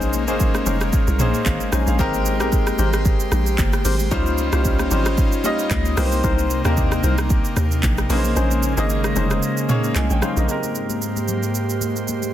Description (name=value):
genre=amapiano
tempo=113 BPM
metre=4/4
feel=swing 55% on 16ths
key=Ab major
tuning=A4 = 440 Hz
part: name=clear concert grand piano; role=accompaniment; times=0.0-12.3 s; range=G3 to Ab5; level=-24 LUFS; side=equal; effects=none
part: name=airy breathy pad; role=sustained chords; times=0.0-12.3 s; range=Ab2 to C5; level=-26 LUFS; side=right 1 dB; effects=chorus
part: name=percussive organ stab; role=stabs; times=0.0-10.5 s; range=Db4 to C5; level=-28 LUFS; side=left 8 dB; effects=chorus, digital delay
part: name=hollow log drum bass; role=bass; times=0.0-10.5 s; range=F1 to Eb2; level=-21 LUFS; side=equal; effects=none
part: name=afro-pop drum kit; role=drums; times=0.0-12.3 s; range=handclaps, hi-hat, kick drum, rim click, shaker, toms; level=-22 LUFS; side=right 1 dB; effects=none
part: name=congas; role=percussion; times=0.0-12.3 s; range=none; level=-32 LUFS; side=left 8 dB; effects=none
room=digital ambience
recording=dense, heavily limited modern master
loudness=-17 LUFS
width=side -12 dB against mid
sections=0.0-10.5 A section; 10.5-12.3 B section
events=drop 0.0-10.5; kick muted 8.4-10.5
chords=0.0 Bbm11; 2.0 Abmaj9; 4.1 Dbmaj9#11; 6.0 Cm7; 8.1 Bbm11; 10.5 Abmaj9